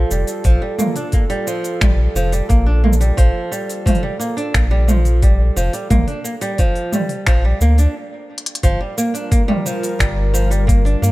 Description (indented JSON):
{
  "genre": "folktronica",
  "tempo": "88 BPM",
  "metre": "4/4",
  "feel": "straight",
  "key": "G minor",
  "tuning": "A4 = 440 Hz",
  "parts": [
    { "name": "warbly tape-like pad", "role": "sustained chords", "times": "0.0-11.1 s", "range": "G3 to Bb4", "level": "-28 LUFS", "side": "right 1 dB", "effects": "chorus, built-in reverb" },
    { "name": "flamenco guitar", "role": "arpeggios", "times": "0.0-11.1 s", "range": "F3 to D4", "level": "-22 LUFS", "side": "right 1 dB", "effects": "tape echo" },
    { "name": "warm sub bass", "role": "bass", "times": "0.0-11.1 s", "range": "F1 to G2", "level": "-15 LUFS", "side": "equal", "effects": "none" },
    { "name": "organic electronic drum kit", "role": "drums", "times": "0.1-11.1 s", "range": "finger snaps, hi-hat, shaker, toms", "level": "-22 LUFS", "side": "right 1 dB", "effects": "none" },
    { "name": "electronic kick drum", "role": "drums", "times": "0.4-10.8 s", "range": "none", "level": "-16 LUFS", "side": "equal", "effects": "none" }
  ],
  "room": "little or no reverb",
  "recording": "none",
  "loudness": "-14 LUFS",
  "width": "side -18 dB against mid",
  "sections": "0.0-8.6 A section; 8.6-11.1 B section",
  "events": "stop 8.0-8.6; drum fill 8.3-8.6",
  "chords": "0.0 Gm7"
}